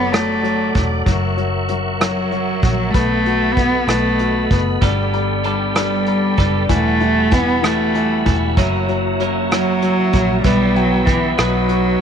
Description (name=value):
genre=six-eight pop ballad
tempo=64 BPM (dotted quarters)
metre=6/8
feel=straight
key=E minor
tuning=A4 = 439 Hz
part: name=warm cello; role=melody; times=0.0-12.0 s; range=E3 to B3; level=-18 LUFS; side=right 2 dB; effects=none
part: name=bright concert grand piano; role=accompaniment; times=0.0-12.0 s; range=E3 to G5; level=-22 LUFS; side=left 13 dB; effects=none
part: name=tonewheel organ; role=sustained chords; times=0.0-12.0 s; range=G3 to D6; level=-25 LUFS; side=right 1 dB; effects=chorus vibrato, stopped rotary speaker
part: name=vintage muted fingered electric bass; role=bass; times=0.0-12.0 s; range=E1 to B1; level=-23 LUFS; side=right 1 dB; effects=none
part: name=vintage brush drum kit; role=drums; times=0.1-11.8 s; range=hi-hat, kick drum, rim click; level=-20 LUFS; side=right 1 dB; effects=none
part: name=twelve-string electric guitar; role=arpeggios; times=4.8-12.0 s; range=E2 to A4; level=-24 LUFS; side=right 14 dB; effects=spring reverb, tape echo
room=light reverb, studio ambience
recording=1960s-style stereo with parts hard left and right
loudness=-14 LUFS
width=side -8 dB against mid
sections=0.0-12.0 A section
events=none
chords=0.0 D/F#; 1.1 F#7; 2.9 B7sus4; 3.9 B7; 4.8 Gadd9; 6.7 Emadd9; 8.6 F#7; 10.4 Em/B; 11.4 B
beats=0.13 | 1.07 2.00 | 2.94 3.88 | 4.82 5.76 | 6.70 7.63 | 8.57 9.51 | 10.45 11.39